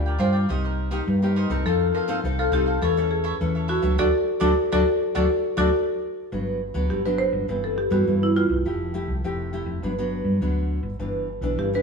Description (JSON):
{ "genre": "samba", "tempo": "103 BPM", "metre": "4/4", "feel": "straight", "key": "G major from 6.3 s", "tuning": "A4 = 441 Hz", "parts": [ { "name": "marimba with medium mallets", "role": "melody", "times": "0.0-11.8 s", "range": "E4 to D5", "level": "-23 LUFS", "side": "left 1 dB", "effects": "none" }, { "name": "nylon-string guitar", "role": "accompaniment", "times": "0.0-11.8 s", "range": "G2 to A4", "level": "-28 LUFS", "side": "equal", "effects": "none" }, { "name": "hollow-body short-scale fingered electric bass", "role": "bass", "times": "0.0-11.8 s", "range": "F1 to G2", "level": "-25 LUFS", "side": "equal", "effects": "none" }, { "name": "cavaquinho", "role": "accompaniment", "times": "0.1-5.7 s", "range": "Eb4 to G5", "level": "-30 LUFS", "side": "right 4 dB", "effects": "none" } ], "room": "moderate stone room reverb, RT60 1.4 s", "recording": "band playing live in one room", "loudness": "-21 LUFS", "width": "side -5 dB against mid", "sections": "0.0-6.3 A section; 6.3-11.8 B section", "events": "band accent 4.0-6.3", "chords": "0.5 Cm7; 1.7 F7; 2.8 A/E; 4.0 D; 6.3 Gmaj7; 7.5 Cmaj7/G; 8.7 Fmaj9; 9.8 Gmaj7; 11.0 Em7/G", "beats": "0.49 1.08 | 1.66 2.24 2.82 3.40 | 3.99 4.57 5.15 5.74 | 6.32 6.91 7.49 8.07 | 8.66 9.24 9.83 10.41 | 11.00 11.58" }